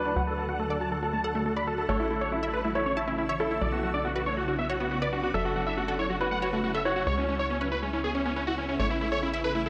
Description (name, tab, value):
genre	trance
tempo	139 BPM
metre	4/4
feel	straight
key	A major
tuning	A4 = 440 Hz
part	warm baby grand piano	second line	0.0-8.7 s	A4 to C#5	-36 LUFS	equal	tape echo
part	tight sequencer bass	bass	0.0-9.7 s	F#1 to D2	-38 LUFS	equal	none
part	big supersaw lead	melody	0.1-9.7 s	C#4 to B5	-32 LUFS	equal	low-pass filter, digital delay
part	unison pluck	arpeggios	0.1-9.7 s	F#3 to A5	-36 LUFS	equal	tape echo
room	moderate lush hall reverb, RT60 2.9 s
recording	none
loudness	-29 LUFS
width	mono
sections	0.0-9.7 A section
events	filter sweep on supersaw synth 0.0-9.7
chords	0.0 D; 1.9 A; 3.6 Bmadd9; 5.3 F#m7; 7.1 C#m7; 8.8 A